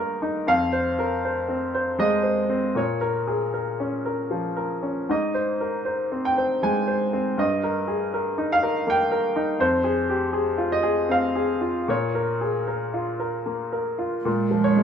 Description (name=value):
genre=neoclassical piano and strings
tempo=74-82 BPM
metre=3/4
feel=rubato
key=F minor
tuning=A4 = 440 Hz
part: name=bright upright piano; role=accompaniment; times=0.0-14.8 s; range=F2 to Ab5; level=-22 LUFS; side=equal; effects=none
part: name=rich cello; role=second line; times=14.2-14.8 s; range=Ab3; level=-20 LUFS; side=right 6 dB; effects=none
room=moderate stone room reverb, RT60 1.1 s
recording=band playing live in one room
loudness=-22 LUFS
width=side -8 dB against mid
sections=0.0-14.3 A section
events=none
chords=0.5 Fm; 2.8 Bbm; 5.1 Ab; 7.4 Eb/G; 9.6 Fm; 11.9 Bbm7